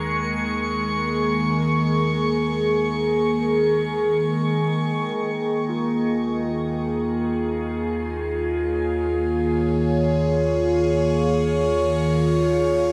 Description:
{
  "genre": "ambient",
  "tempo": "free time",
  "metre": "none",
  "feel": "none",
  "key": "unclear",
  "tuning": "A4 = 443 Hz",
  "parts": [
    { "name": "evolving wavetable pad", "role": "sustained chords", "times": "0.0-12.9 s", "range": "Eb3 to Db5", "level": "-23 LUFS", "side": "equal", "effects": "phaser, built-in reverb" },
    { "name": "warm sub bass", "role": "bass", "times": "0.0-12.9 s", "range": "Eb2", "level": "-36 LUFS", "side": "equal", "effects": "none" },
    { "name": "organ-like drone", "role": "drone", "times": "0.0-5.3 s", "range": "none", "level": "barely audible", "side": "none", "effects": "none" },
    { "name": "drifting glass-harmonics texture", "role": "texture", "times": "0.0-5.2 s", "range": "Db6", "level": "-33 LUFS", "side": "equal", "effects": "chorus, built-in reverb" },
    { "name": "muted felt-like synth keys", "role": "arpeggios", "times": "5.7-12.9 s", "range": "F4", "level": "-35 LUFS", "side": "equal", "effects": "none" }
  ],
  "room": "wet shimmer reverb, RT60 8.7 s",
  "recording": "none",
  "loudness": "-22 LUFS",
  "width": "mono",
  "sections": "0.0-5.2 A section; 5.2-12.9 B section",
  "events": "filter sweep on ambient pad 0.0-5.2; fade-in on sub bass 5.2-12.9",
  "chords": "0.0 Eb9sus4",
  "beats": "free time"
}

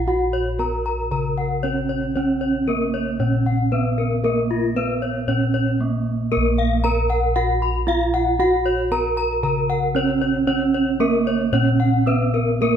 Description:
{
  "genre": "Balinese gamelan",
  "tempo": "115 BPM",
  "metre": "4/4",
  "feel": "straight",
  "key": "Bb pelog",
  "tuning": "A4 = 440 Hz",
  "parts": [
    { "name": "gamelan-type bronze metallophone", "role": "melody", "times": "0.0-12.8 s", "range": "Bb3 to Bb4", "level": "-22 LUFS", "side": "right 6 dB", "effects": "none" },
    { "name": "gamelan-type bossed gongs", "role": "bass", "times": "0.0-12.8 s", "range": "Bb1 to Bb4", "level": "-22 LUFS", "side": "left 1 dB", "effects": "none" },
    { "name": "gamelan-type bronze metallophone", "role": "arpeggios", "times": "0.1-12.8 s", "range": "F4-30c to Cb6+20c", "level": "-23 LUFS", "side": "left 4 dB", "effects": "none" }
  ],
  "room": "moderate recital hall reverb, RT60 1.3 s",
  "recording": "none",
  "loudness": "-18 LUFS",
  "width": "side -8 dB against mid",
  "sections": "0.0-12.8 A section",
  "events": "none",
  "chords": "none",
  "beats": "| 0.08 0.60 1.12 1.64 | 2.16 2.68 3.20 3.72 | 4.24 4.76 5.28 5.80 | 6.32 6.84 7.36 7.88 | 8.40 8.92 9.44 9.96 | 10.48 11.00 11.53 12.07 | 12.62"
}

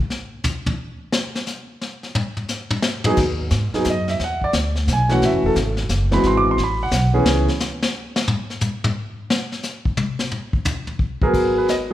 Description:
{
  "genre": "jazz piano trio",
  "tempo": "176 BPM",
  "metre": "3/4",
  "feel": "swing 65% on 8ths",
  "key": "G# minor",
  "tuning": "A4 = 441 Hz",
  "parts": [
    { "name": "vintage brush drum kit", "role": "drums", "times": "0.1-11.9 s", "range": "brushed snare drum, crash cymbal, hi-hat, kick drum, snare drum, toms", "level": "-23 LUFS", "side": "left 1 dB", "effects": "none" },
    { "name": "warm concert grand piano", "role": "melody", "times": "3.1-7.5, 11.2-11.9 s", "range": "E3 to D6", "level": "-19 LUFS", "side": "right 1 dB", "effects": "none" },
    { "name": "upright bass", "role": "bass", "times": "3.2-7.5, 11.2-11.9 s", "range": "E1 to G#2", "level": "-21 LUFS", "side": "equal", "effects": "none" }
  ],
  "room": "moderate recital hall reverb, RT60 1.5 s",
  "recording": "recorded in a church or concert hall",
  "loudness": "-18 LUFS",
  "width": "side -13 dB against mid",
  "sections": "0.0-3.2 A section; 3.2-11.3 A section",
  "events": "grand piano solo 0.0-11.3; drum solo 0.0-3.2, 7.3-11.3",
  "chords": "0.1 N.C.; 3.2 G#7(no3); 4.2 E5; 5.2 A6; 6.2 G#7alt; 7.3 C#m7; 8.3 N.C.; 10.3 D#5; 11.3 G#m9",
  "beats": "| 0.12 0.46 0.80 | 1.14 1.48 1.82 | 2.16 2.50 2.84 | 3.18 3.52 3.86 | 4.20 4.54 4.88 | 5.22 5.56 5.91 | 6.25 6.58 6.92 | 7.26 7.61 7.95 | 8.29 8.62 8.96 | 9.30 9.64 9.98 | 10.32 10.66 11.00 | 11.34 11.68"
}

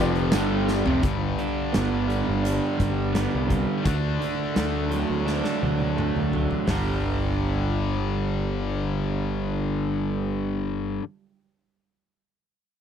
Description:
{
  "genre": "classic rock",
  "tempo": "85 BPM",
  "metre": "4/4",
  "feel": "straight",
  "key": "G major",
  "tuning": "A4 = 440 Hz",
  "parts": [
    { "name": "bright upright piano", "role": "accompaniment", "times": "0.0-0.8 s", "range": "G4 to D5", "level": "-31 LUFS", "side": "left 8 dB", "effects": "none" },
    { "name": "crunchy overdriven guitar", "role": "riff", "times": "0.0-11.0 s", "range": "F2 to D4", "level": "-28 LUFS", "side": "right 11 dB", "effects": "spring reverb" },
    { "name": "overdriven electric guitar", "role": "riff", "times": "0.0-1.0 s", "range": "F2 to G3", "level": "-26 LUFS", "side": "left 1 dB", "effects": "none" },
    { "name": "tight distorted guitar", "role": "riff", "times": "0.0-11.0 s", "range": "F2 to D4", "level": "-29 LUFS", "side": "left 10 dB", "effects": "distortion" },
    { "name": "fuzz picked electric bass", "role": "bass", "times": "0.0-11.0 s", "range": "F1 to D2", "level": "-28 LUFS", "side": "left 1 dB", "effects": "overdrive" },
    { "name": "huge arena drum kit", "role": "drums", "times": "0.2-6.8 s", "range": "hi-hat, kick drum, snare drum, toms", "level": "-29 LUFS", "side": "equal", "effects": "none" },
    { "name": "tambourine", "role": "percussion", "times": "0.3-0.8 s", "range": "none", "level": "-44 LUFS", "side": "right 6 dB", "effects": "none" }
  ],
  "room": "light reverb",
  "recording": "none",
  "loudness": "-22 LUFS",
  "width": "side -8 dB against mid",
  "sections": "0.0-1.0 A section; 1.0-6.7 B section; 6.7-9.5 C section",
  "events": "drum fill 0.7-1.0, 5.3-6.7",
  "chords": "0.0 G; 3.9 D; 6.7 G5",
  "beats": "0.33 | 1.03 1.73 2.44 3.15 | 3.85 4.56 5.27 5.98 | 6.69 7.40 8.11 8.82"
}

